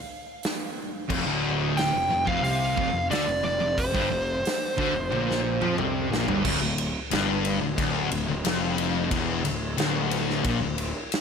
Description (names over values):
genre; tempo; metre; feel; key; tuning
stoner and doom metal; 90 BPM; 4/4; straight; D minor; A4 = 440 Hz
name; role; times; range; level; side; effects
big rock drum kit; drums; 0.4-11.2 s; crash cymbal, hi-hat, kick drum, ride cymbal, snare drum, toms; -30 LUFS; right 1 dB; none
fuzz guitar; riff; 1.1-10.9 s; D2 to F3; -31 LUFS; equal; distortion
thick fuzz guitar; riff; 1.1-10.9 s; D2 to F3; -29 LUFS; left 9 dB; distortion
thick fuzz guitar; riff; 1.1-6.4 s; D2 to F3; -31 LUFS; right 10 dB; distortion
fuzz picked electric bass; bass; 1.1-10.9 s; D1 to F2; -32 LUFS; right 1 dB; overdrive
fuzz lead guitar; melody; 1.8-5.7 s; C5 to G5; -28 LUFS; equal; distortion, tape echo
room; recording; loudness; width
light reverb, small room ambience; none; -23 LUFS; side -6 dB against mid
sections
0.0-6.4 A section; 6.4-11.2 B section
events
drum fill 5.1-6.4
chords
0.0 N.C.; 1.1 F5; 6.4 Dm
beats
0.43 | 1.10 1.77 2.44 3.11 | 3.77 4.44 5.11 5.78 | 6.45 7.11 7.78 8.45 | 9.12 9.78 10.45 11.12